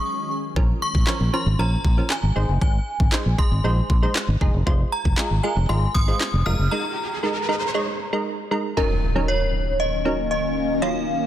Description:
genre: dance-pop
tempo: 117 BPM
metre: 4/4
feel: straight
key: unclear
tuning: A4 = 436 Hz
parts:
  - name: synth chime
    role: melody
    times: 0.0-11.3 s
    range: Bb4 to F6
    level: -27 LUFS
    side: left 1 dB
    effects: ensemble chorus, phaser, digital delay
  - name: wavetable chord stab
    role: accompaniment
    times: 0.0-11.3 s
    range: F3 to Eb5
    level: -27 LUFS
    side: right 2 dB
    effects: sidechain pumping
  - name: ethereal airy pad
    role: sustained chords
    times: 0.0-0.5, 9.4-11.3 s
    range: Eb3 to Ab4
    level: -28 LUFS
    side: left 1 dB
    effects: ensemble chorus, built-in reverb, sidechain pumping
  - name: fingered electric bass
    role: bass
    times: 0.6-6.7 s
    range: F1 to Bb1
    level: -21 LUFS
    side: equal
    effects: sidechain pumping
  - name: smooth R&B drum kit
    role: drums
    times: 0.6-6.3 s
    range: handclaps, kick drum, snare drum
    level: -21 LUFS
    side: equal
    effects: none
  - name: riser and impact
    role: sound effects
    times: 6.2-10.8 s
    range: none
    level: -28 LUFS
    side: equal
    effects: none
room: light reverb, digital ambience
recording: dense, heavily limited modern master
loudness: -19 LUFS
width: side -12 dB against mid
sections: 0.6-8.8 A section; 8.8-11.3 B section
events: break 0.1-0.6, 6.7-8.8; riser 6.2-8.8; impact 8.8-10.8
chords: 0.0 Ab7sus4; 0.6 Bbm; 2.4 Ab; 4.7 Fm; 6.7 Absus2; 8.8 Ebm7

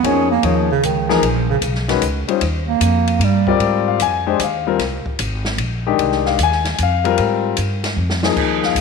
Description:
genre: modal jazz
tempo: 151 BPM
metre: 3/4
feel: swing 67% on 8ths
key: Ab lydian from 3.6 s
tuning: A4 = 441 Hz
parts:
  - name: mellow bass clarinet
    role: second line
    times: 0.0-3.6 s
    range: C#3 to C#4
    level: -18 LUFS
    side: right 8 dB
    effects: none
  - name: warm concert grand piano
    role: accompaniment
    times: 0.0-8.8 s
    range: D#3 to Ab5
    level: -18 LUFS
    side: left 10 dB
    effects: none
  - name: upright bass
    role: bass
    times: 0.0-8.8 s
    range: Ab1 to Ab2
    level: -21 LUFS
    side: equal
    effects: none
  - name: open jazz drum kit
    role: drums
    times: 0.0-8.8 s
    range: crash cymbal, hi-hat, kick drum, ride cymbal, snare drum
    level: -24 LUFS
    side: equal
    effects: none
room: wet echo chamber reverb, RT60 1.6 s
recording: 1960s-style stereo with parts hard left and right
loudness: -15 LUFS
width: side -4 dB against mid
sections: 0.0-3.6 A section; 3.6-8.8 A section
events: bass clarinet solo 0.0-3.6; drum fill 8.0-8.4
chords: 0.0 A#m; 2.4 D#add9; 3.6 Ab69

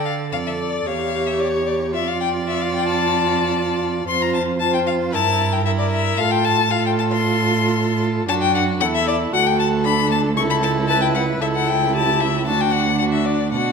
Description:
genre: quick classical-period movement for string quartet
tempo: 114 BPM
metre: 4/4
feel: rubato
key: D major from 8.3 s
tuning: A4 = 439 Hz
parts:
  - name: rich violin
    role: melody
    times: 0.0-13.7 s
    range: C#5 to C#6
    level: -21 LUFS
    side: left 8 dB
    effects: none
  - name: rich violin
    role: second line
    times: 0.0-13.7 s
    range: F#4 to D5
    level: -26 LUFS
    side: left 2 dB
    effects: none
  - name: rich viola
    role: accompaniment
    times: 0.0-13.7 s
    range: D4 to A4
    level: -24 LUFS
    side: right 4 dB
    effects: none
  - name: rich cello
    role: bass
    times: 0.0-13.7 s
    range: C#2 to D3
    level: -22 LUFS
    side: right 5 dB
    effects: none
room: wet recital hall reverb, RT60 1.5 s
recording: none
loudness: -17 LUFS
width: side -5 dB against mid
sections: 0.0-13.7 A section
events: none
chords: 0.0 Dm; 0.9 Em6; 1.9 Dm/F; 5.1 Gm69; 6.2 F/A; 8.3 D/F#; 9.3 D; 10.4 A/C#; 12.5 D

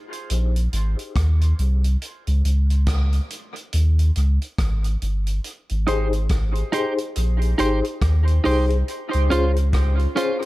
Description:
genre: dub reggae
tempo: 70 BPM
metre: 4/4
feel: swing 60% on 16ths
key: Ab major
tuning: A4 = 441 Hz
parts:
  - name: vintage drum kit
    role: drums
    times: 0.1-10.5 s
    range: hi-hat, kick drum, rim click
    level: -28 LUFS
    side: equal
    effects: none
  - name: warm sub bass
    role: bass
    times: 0.3-10.1 s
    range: G1 to Eb2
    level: -18 LUFS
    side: equal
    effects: none
  - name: clean electric guitar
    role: accompaniment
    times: 5.9-10.4 s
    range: Db4 to C5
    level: -26 LUFS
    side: right 3 dB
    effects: analog chorus, low-pass filter, dub echo
  - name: reed electric piano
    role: stabs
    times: 5.9-10.4 s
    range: Db4 to C5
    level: -26 LUFS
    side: left 4 dB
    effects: fast tremolo, low-pass filter, dub echo
room: light reverb, small room ambience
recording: echo-heavy mix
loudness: -18 LUFS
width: side -18 dB against mid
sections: 0.0-10.5 A section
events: break 0.0-5.4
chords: 0.0 Ab; 2.0 Db5; 5.4 Abmaj7; 8.9 Dbmaj7

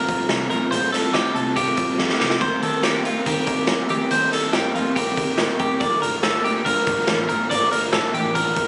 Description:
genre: jangly indie pop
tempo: 141 BPM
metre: 4/4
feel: straight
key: unclear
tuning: A4 = 440 Hz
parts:
  - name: electric guitar through a small old amp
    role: accompaniment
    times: 0.0-8.7 s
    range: G2 to Bb4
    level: -28 LUFS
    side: equal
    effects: spring reverb
  - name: twelve-string electric guitar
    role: arpeggios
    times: 0.0-8.7 s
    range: F4 to D5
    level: -25 LUFS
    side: equal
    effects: analog delay
  - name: vintage muted picked electric bass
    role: bass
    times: 0.0-8.7 s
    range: G1 to Eb3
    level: -34 LUFS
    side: equal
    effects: none
  - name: raw garage drum kit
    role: drums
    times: 0.1-8.7 s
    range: hi-hat, kick drum, snare drum, splash cymbal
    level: -25 LUFS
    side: equal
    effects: none
room: light reverb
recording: recorded on a phone in the room, club reverb, compression, nothing above 10.8 kHz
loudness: -21 LUFS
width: mono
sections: 0.0-8.7 A section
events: drum fill 2.0-2.4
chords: 0.0 Bb69; 2.4 Eb6; 5.8 Gm7

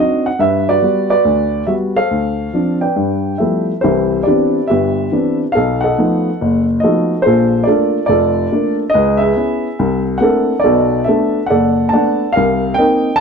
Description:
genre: solo jazz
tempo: 141 BPM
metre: 4/4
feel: swing 67% on 8ths, rubato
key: unclear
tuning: A4 = 440 Hz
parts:
  - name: dark upright piano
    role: solo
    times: 0.0-13.2 s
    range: F1 to A5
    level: -12 LUFS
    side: equal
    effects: none
room: moderate club reverb, RT60 0.7 s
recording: dark, warm production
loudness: -12 LUFS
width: side -5 dB against mid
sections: 0.0-3.8 A section; 3.8-13.2 B section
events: none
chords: 0.4 Gmaj7; 2.1 Dm7; 3.0 G13; 3.8 Cmaj9; 5.6 B7#11; 7.3 Bbmaj7; 8.9 C#m7; 9.8 C13; 10.7 Bm7; 12.4 Cm7

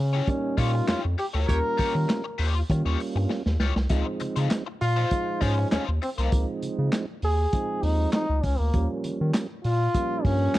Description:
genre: funk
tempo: 99 BPM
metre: 4/4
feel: straight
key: unclear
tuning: A4 = 440 Hz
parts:
  - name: bright trombone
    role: melody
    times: 0.0-10.6 s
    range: Bb3 to Bb4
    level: -28 LUFS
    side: left 1 dB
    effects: none
  - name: round analog bass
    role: bass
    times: 0.0-10.6 s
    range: C2 to Eb3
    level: -24 LUFS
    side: equal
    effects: none
  - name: overdriven electric guitar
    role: accompaniment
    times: 0.1-6.3 s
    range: Eb4 to Db5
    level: -34 LUFS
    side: left 8 dB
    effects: wah
  - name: mellow tonewheel organ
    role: stabs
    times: 0.3-10.6 s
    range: F3 to C5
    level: -31 LUFS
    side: right 4 dB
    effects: overdrive, chorus vibrato, slow rotary speaker, tube saturation
  - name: vintage drum kit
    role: drums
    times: 0.3-10.6 s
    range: handclaps, hi-hat, kick drum, snare drum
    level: -29 LUFS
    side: equal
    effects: none
  - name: clear horn section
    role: second line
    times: 1.5-1.6 s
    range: Bb3 to Db5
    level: -33 LUFS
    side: left 1 dB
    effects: none
room: small room ambience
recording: dry, close 1970s-style studio recording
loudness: -23 LUFS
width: side -16 dB against mid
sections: 0.0-10.6 A section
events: band accent 1.5-3.9; drum fill 3.3-3.9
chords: 0.0 Eb9; 3.9 Dbmaj9; 8.7 Eb9

